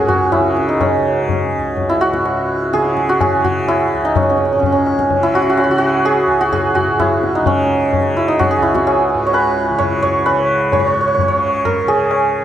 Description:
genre	indian classical, Hindustani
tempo	127 BPM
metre	7/4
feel	straight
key	C# raga bhimpalasi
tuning	A4 = 440 Hz
part	santur	melody	0.0-12.4 s	C#4 to C#5	-14 LUFS	right 2 dB	none
part	tanpura	drone	0.0-12.4 s	C#2 to C#3	-23 LUFS	left 1 dB	none
part	tabla	percussion	0.1-12.3 s	none	-20 LUFS	left 5 dB	none
room	moderate recital hall reverb, RT60 1.7 s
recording	dark, warm production, lossy compression artefacts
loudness	-13 LUFS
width	side -10 dB against mid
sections	0.0-10.7 A section; 10.7-12.4 B section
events	speeding up 0.0-12.4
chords	none

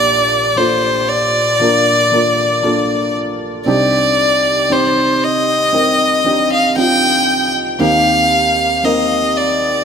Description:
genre	pop ballad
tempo	58 BPM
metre	4/4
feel	straight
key	Bb major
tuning	A4 = 441 Hz
part	clear violin	melody	0.0-9.8 s	C5 to G5	-13 LUFS	left 1 dB	ping-pong delay
part	felt-muted upright piano	accompaniment	0.0-9.8 s	Bb1 to Bb4	-17 LUFS	right 2 dB	lush chorus
room	wet plate reverb, RT60 3.5 s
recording	dreamy mix soaked in reverb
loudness	-11 LUFS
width	side -7 dB against mid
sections	0.0-9.8 A section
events	none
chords	0.0 Bb6; 3.7 Cmadd9; 7.8 Eb6

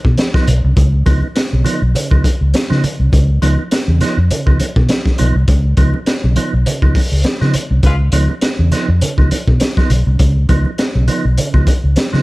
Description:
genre	funk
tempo	102 BPM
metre	4/4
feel	swing 56% on 16ths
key	Db mixolydian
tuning	A4 = 440 Hz
part	vintage muted fingered electric bass	bass	0.0-12.2 s	Cb2 to Db3	-13 LUFS	equal	none
part	crunchy breakbeat drum kit	drums	0.0-12.2 s	hi-hat, kick drum, snare drum	-16 LUFS	equal	none
part	congas	percussion	0.2-12.2 s	none	-23 LUFS	right 2 dB	none
part	percussive tonewheel organ	stabs	0.3-12.2 s	Db3 to Eb4	-21 LUFS	right 3 dB	overdrive, chorus vibrato, fast rotary speaker
part	clear horn section	second line	7.8-7.9 s	Ab3 to Cb5	-25 LUFS	left 2 dB	none
room	studio reverb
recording	none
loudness	-11 LUFS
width	side -20 dB against mid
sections	0.0-12.2 A section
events	none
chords	0.0 Db9

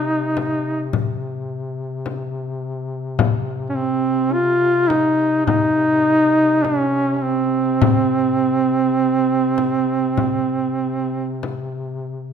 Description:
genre	caucasian folk, Caucasian lament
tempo	43-54 BPM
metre	4/4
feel	rubato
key	C phrygian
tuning	A4 = 440 Hz
part	mellow duduk	melody	0.0-11.4 s	C4 to F4	-17 LUFS	right 2 dB	none
part	mellow duduk	drone	0.0-12.3 s	C3	-27 LUFS	left 3 dB	none
part	frame drum	percussion	0.4-11.7 s	none	-22 LUFS	left 7 dB	none
room	moderate scoring stage reverb, RT60 1.6 s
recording	minimal, uncompressed stereo recording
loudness	-17 LUFS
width	side -7 dB against mid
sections	0.0-12.3 A section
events	none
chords	none

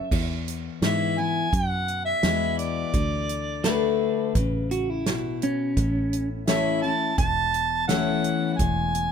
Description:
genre	honky-tonk and classic country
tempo	85 BPM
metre	4/4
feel	straight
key	unclear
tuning	A4 = 440 Hz
part	clean electric guitar	second line	0.0-6.3 s	C#4 to E5	-28 LUFS	right 2 dB	tape echo
part	picked steel-string acoustic guitar	accompaniment	0.0-9.1 s	E2 to F#4	-27 LUFS	left 8 dB	none
part	fingered electric bass	bass	0.1-9.1 s	E1 to G#2	-29 LUFS	right 1 dB	none
part	natural country drum kit	drums	0.1-9.1 s	crash cymbal, hi-hat, kick drum, snare drum	-27 LUFS	right 1 dB	none
part	mellow harmonica	melody	0.8-9.1 s	D5 to A5	-26 LUFS	right 2 dB	none
part	warm upright piano	accompaniment	6.5-8.5 s	A4 to E5	-35 LUFS	right 7 dB	none
room	little or no reverb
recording	close, detailed microphones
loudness	-22 LUFS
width	side -7 dB against mid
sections	0.1-9.1 A section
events	none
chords	0.1 E; 2.9 D; 5.8 A; 8.6 E

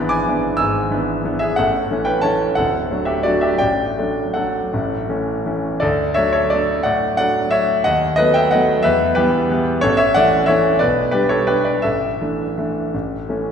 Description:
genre	classical, piano waltz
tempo	156-193 BPM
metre	3/4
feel	rubato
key	D major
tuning	A4 = 441 Hz
part	clear concert grand piano	solo	0.0-13.5 s	D1 to E6	-16 LUFS	equal	none
room	wet concert hall reverb, RT60 1.9 s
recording	recorded in a church or concert hall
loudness	-15 LUFS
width	side -7 dB against mid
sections	0.0-5.8 A section; 5.8-13.5 B section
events	none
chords	0.0 E7/G#; 1.6 A; 2.6 D; 3.6 D/A; 4.7 A; 5.8 D; 7.9 B7/D#; 8.9 Em; 9.8 A; 10.8 G/B; 11.8 Asus4; 12.9 A

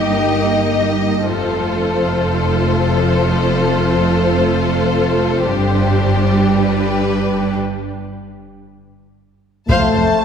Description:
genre	cinematic, epic orchestral film score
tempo	free time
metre	none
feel	none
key	F mixolydian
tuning	A4 = 440 Hz
part	clear symphonic violin section	second line	0.0-10.0 s	G4 to F5	-19 LUFS	left 4 dB	none
part	warm symphonic viola section	accompaniment	0.0-10.0 s	G3 to C5	-20 LUFS	right 1 dB	none
part	rich symphonic cello section	bass	0.0-10.0 s	F2 to G2	-20 LUFS	right 2 dB	none
part	rich symphonic double bass section	bass	0.0-10.0 s	F1 to G1	-21 LUFS	right 1 dB	none
part	warm symphonic violin section	melody	9.7-10.2 s	A5	-22 LUFS	left 3 dB	none
part	mellow French horn section	sustained chords	9.7-10.2 s	A3	-15 LUFS	left 2 dB	none
part	taiko ensemble	drums	9.7-10.2 s	none	-19 LUFS	left 1 dB	none
room	wet concert hall reverb, RT60 2.2 s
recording	recorded in a church or concert hall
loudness	-14 LUFS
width	side -7 dB against mid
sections	0.0-9.7 A section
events	build-up 0.0-9.7; break 7.6-9.7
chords	0.0 Eb/G; 1.3 F; 5.5 G; 7.6 N.C.; 9.7 F

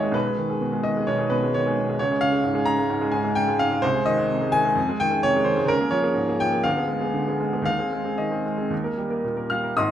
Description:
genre	classical, romantic character piece for solo piano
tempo	106-135 BPM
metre	4/4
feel	rubato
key	Ab major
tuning	A4 = 443 Hz
part	bright upright piano	solo	0.0-9.9 s	Ab1 to F6	-20 LUFS	equal	none
room	moderate recital hall reverb, RT60 1.4 s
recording	close, detailed microphones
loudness	-21 LUFS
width	side -10 dB against mid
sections	0.0-9.8 A section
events	none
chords	0.1 G#m/B; 2.0 Db; 3.8 Ab/C; 4.8 Fm7 (rootless); 5.7 Bbm7/Db; 6.7 Ddim7; 7.7 Ab/Eb; 8.7 Eb

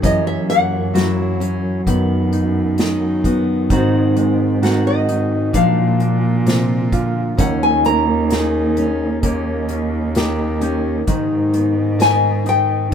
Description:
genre	acoustic folk-pop ballad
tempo	65 BPM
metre	4/4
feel	straight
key	G# minor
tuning	A4 = 440 Hz
part	fingerpicked steel-string acoustic guitar	accompaniment	0.0-12.9 s	D#2 to G4	-20 LUFS	left 2 dB	none
part	concert harp	arpeggios	0.0-12.9 s	D#3 to G#4	-21 LUFS	right 2 dB	none
part	warm cello	bass	0.0-12.9 s	D#2 to A#2	-20 LUFS	right 1 dB	none
part	unplugged drum kit	drums	0.0-12.9 s	hi-hat, kick drum, snare drum	-21 LUFS	equal	none
part	nylon-string guitar	melody	0.1-12.9 s	D#5 to A#5	-18 LUFS	left 3 dB	none
room	little or no reverb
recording	minimal, uncompressed stereo recording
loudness	-15 LUFS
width	side -8 dB against mid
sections	0.0-12.9 A section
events	none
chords	0.0 F#7; 1.9 B/F#; 3.7 G#7; 5.5 A#; 7.4 D#7sus4; 9.2 D#7; 11.1 G#m

